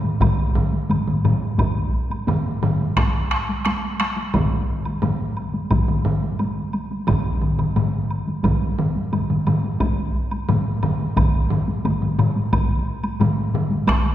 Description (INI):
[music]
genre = japanese traditional, taiko drum ensemble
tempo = 88 BPM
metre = 4/4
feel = straight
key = none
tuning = none
[part]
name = taiko ensemble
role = percussion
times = 0.0-14.0 s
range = none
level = -26 LUFS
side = equal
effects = none
[part]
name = solo taiko drums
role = percussion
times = 0.2-14.0 s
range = none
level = -25 LUFS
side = right 1 dB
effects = none
[part]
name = taiko ensemble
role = percussion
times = 0.2-14.0 s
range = none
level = -24 LUFS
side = left 2 dB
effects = none
[part]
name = taiko ensemble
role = percussion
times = 0.2-14.0 s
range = none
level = -24 LUFS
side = equal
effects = none
[part]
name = woodblock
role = percussion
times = 0.2-14.0 s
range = none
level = -32 LUFS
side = right 2 dB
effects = none
[sound]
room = wet concert hall reverb, RT60 1.9 s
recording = recorded in a church or concert hall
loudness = -19 LUFS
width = side -12 dB against mid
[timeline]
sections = 0.0-14.1 A section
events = none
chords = none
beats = | 0.21 0.90 1.59 2.28 | 2.96 3.65 4.34 5.02 | 5.71 6.39 7.08 7.76 | 8.45 9.13 9.81 10.49 | 11.17 11.85 12.53 13.21 | 13.88